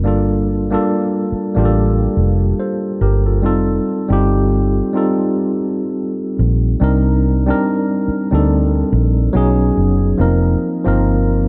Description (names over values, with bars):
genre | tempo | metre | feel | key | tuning
contemporary R&B | 71 BPM | 4/4 | swing 58% on 16ths | unclear | A4 = 440 Hz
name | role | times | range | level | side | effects
tine electric piano | accompaniment | 0.0-11.5 s | F3 to C5 | -19 LUFS | equal | none
vintage muted fingered electric bass | bass | 0.0-11.5 s | F1 to D2 | -18 LUFS | equal | none
room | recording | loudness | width
light reverb, digital ambience | none | -16 LUFS | mono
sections
0.0-11.5 A section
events
none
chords
0.1 Gm9; 3.4 F9; 6.8 Cm9; 9.3 B69; 10.2 F7sus4